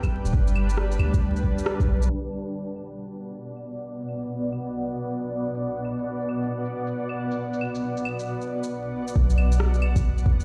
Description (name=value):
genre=future garage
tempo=136 BPM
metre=4/4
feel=swing 64% on 16ths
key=B minor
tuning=A4 = 439 Hz
part: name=granular cloud pad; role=sustained chords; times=0.0-10.4 s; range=B2 to A5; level=-31 LUFS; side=equal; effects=built-in reverb, sidechain pumping
part: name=electronic kick drum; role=drums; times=0.0-1.9, 9.2-10.4 s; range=none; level=-24 LUFS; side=equal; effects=overdrive, studio reverb
part: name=electronic shaker, claves and rim click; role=drums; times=0.0-10.4 s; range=none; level=-37 LUFS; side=equal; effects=overdrive, studio reverb
part: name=soft 808-style bass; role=bass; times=0.2-2.1, 9.2-10.4 s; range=D1 to E2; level=-24 LUFS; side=equal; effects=sidechain pumping
room=light reverb, digital ambience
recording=played on a big sound system in a bare room, large studio reverb, vinyl crackle, low-pass filter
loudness=-26 LUFS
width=mono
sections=0.0-2.1 A section; 2.1-9.2 B section; 9.2-10.4 C section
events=band accent 1.7; filter sweep on ambient pad 2.1-9.2; filter sweep 2.1-9.2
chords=0.0 G; 2.1 Bm